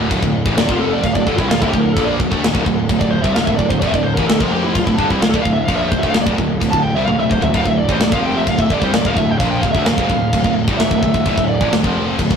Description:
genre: heavy metal.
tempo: 129 BPM.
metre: 4/4.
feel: straight.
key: D minor.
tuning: A4 = 441 Hz.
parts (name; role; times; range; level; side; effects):
heavy high-gain guitar; riff; 0.0-12.4 s; D2 to Bb3; -18 LUFS; right 1 dB; distortion.
fuzz picked electric bass; bass; 0.0-12.4 s; D1 to D2; -22 LUFS; equal; overdrive.
tight metal drum kit; drums; 0.1-12.4 s; crash cymbal, kick drum, snare drum, toms; -18 LUFS; left 1 dB; none.
bluesy overdriven lead guitar; melody; 0.6-11.7 s; D4 to A5; -20 LUFS; equal; distortion.
room: moderate small room reverb, RT60 0.5 s.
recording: rough rehearsal-room recording.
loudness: -14 LUFS.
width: side -7 dB against mid.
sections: 0.1-12.4 A section.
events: lead electric guitar solo 0.1-12.4; drum fill 7.1-7.5.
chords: 0.1 Dm.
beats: | 0.11 0.57 1.04 1.50 | 1.97 2.43 2.90 3.36 | 3.82 4.29 4.75 5.22 | 5.68 6.15 6.61 7.08 | 7.54 8.01 8.47 8.94 | 9.40 9.87 10.33 10.79 | 11.26 11.72 12.19.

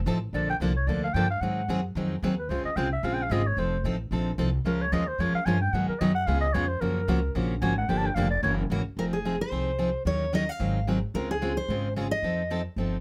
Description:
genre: acoustic string swing (jazz manouche).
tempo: 222 BPM.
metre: 4/4.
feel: swing 58% on 8ths.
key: F minor.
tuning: A4 = 440 Hz.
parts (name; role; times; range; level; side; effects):
upright bass; bass; 0.0-13.0 s; F1 to Ab2; -32 LUFS; equal; none.
picked steel-string acoustic guitar; accompaniment; 0.1-13.0 s; Db3 to Bb4; -31 LUFS; equal; none.
growling clarinet; second line; 0.3-8.5 s; Bb4 to A5; -32 LUFS; equal; none.
picked steel-string acoustic guitar; melody; 9.0-12.6 s; Ab4 to F5; -32 LUFS; equal; none.
room: little or no reverb.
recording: close, detailed microphones.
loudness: -27 LUFS.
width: mono.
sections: 0.3-9.0 A section; 9.0-13.0 B section.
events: clarinet solo 0.0-9.0.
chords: 0.3 Bbmaj7; 1.4 Ab7; 2.5 Dbmaj7; 3.6 F7; 4.7 Bbm7; 5.7 Abm7; 6.3 Db7; 6.8 Gbmaj7; 7.9 Gm7; 8.4 Gb9; 9.0 Fm7; 10.1 Ebm7; 10.6 Ab7; 11.1 Dbmaj7; 12.2 F7.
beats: 0.07 | 0.34 0.61 0.88 1.15 | 1.42 1.69 1.96 2.23 | 2.50 2.77 3.04 3.31 | 3.58 3.85 4.12 4.38 | 4.65 4.92 5.19 5.46 | 5.73 6.00 6.27 6.54 | 6.81 7.08 7.35 7.62 | 7.89 8.16 8.43 8.70 | 8.97 9.24 9.51 9.78 | 10.05 10.32 10.59 10.87 | 11.14 11.41 11.68 11.95 | 12.22 12.49 12.76.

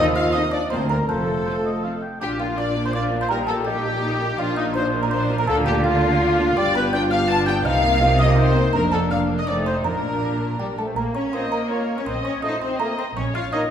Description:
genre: cinematic.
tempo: 164 BPM.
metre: 3/4.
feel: straight.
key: Bb major.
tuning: A4 = 440 Hz.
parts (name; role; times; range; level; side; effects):
music box; melody; 0.0-13.7 s; Eb5 to A6; -29 LUFS; right 2 dB; none.
clear studio violin section; second line; 0.0-13.7 s; A3 to A5; -28 LUFS; left 2 dB; none.
hollow small flute group; second line; 0.0-13.7 s; Eb4 to A5; -29 LUFS; left 1 dB; none.
mellow clarinet; second line; 0.0-2.0, 10.2-13.7 s; F4 to F5; -32 LUFS; left 1 dB; none.
mellow oboe; second line; 0.0-13.7 s; Eb4 to A5; -29 LUFS; equal; none.
mellow bassoon; accompaniment; 0.0-13.7 s; F3 to G4; -28 LUFS; right 1 dB; none.
mellow French horn section; sustained chords; 0.0-13.7 s; G3 to F4; -28 LUFS; left 2 dB; none.
rich studio double bass section; bass; 0.0-13.4 s; F1 to Eb2; -26 LUFS; right 2 dB; none.
warm studio cello section; bass; 0.0-13.6 s; D2 to F4; -27 LUFS; right 1 dB; none.
rich studio violin section; melody; 0.3-13.6 s; Eb4 to A5; -32 LUFS; left 4 dB; none.
rich studio viola section; accompaniment; 0.3-13.7 s; F3 to Eb5; -29 LUFS; left 2 dB; none.
room: wet recital hall reverb, RT60 1.5 s.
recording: recorded in a church or concert hall.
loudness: -19 LUFS.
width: side -9 dB against mid.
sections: 0.0-2.2 A section; 2.2-11.0 B section; 11.0-13.7 C section.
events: none.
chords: 0.0 F7/Eb; 0.7 Bb/D; 1.1 F; 2.2 Bb; 3.3 Eb/Bb; 4.4 Bb; 5.5 Bb/D; 6.6 G7; 7.7 Cm7; 8.7 Bb/F; 9.5 F7; 9.9 Bb; 11.0 Bbm; 12.1 F7/Bb; 13.2 Bbm.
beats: 0.34 0.71 | 1.09 1.46 1.84 | 2.21 2.58 2.94 | 3.31 3.67 4.03 | 4.40 4.76 5.12 | 5.48 5.84 6.21 | 6.57 6.93 7.29 | 7.66 8.02 8.38 | 8.75 9.11 9.48 | 9.85 10.23 10.60 | 10.97 11.33 11.70 | 12.07 12.43 12.80 | 13.16 13.53.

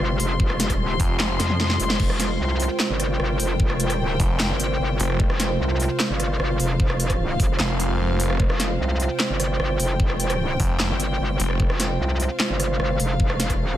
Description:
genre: heavy wobble dubstep.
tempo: 150 BPM.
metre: 4/4.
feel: half-time.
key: F minor.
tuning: A4 = 440 Hz.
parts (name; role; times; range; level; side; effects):
evolving wavetable pad; sustained chords; 0.0-13.8 s; C3 to C5; -29 LUFS; right 1 dB; chorus, built-in reverb, sidechain pumping.
metallic wobble bass; bass; 0.0-13.8 s; F1 to F2; -24 LUFS; equal; chorus, overdrive.
big-room dance drum kit; drums; 0.0-13.6 s; crash cymbal, handclaps, hi-hat, rim click, snare drum, toms; -26 LUFS; equal; none.
dark studio string section; texture; 0.0-13.8 s; F4 to C6; -29 LUFS; left 1 dB; sidechain pumping.
electronic kick drum; drums; 0.4-13.6 s; none; -22 LUFS; equal; none.
snarling distorted saw bass; bass; 1.0-1.4, 4.2-5.2, 7.6-11.6 s; F1; -24 LUFS; equal; distortion, overdrive.
room: light reverb.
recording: none.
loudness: -20 LUFS.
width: side -12 dB against mid.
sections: 0.0-13.8 A section.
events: drum fill 1.4-2.0.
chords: 0.0 Fm.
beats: 0.00 | 0.40 0.80 1.20 1.60 | 2.00 2.40 2.80 3.20 | 3.60 4.00 4.40 4.80 | 5.20 5.60 6.00 6.40 | 6.80 7.20 7.60 8.00 | 8.40 8.80 9.20 9.60 | 10.00 10.40 10.80 11.20 | 11.60 12.00 12.40 12.80 | 13.20 13.60.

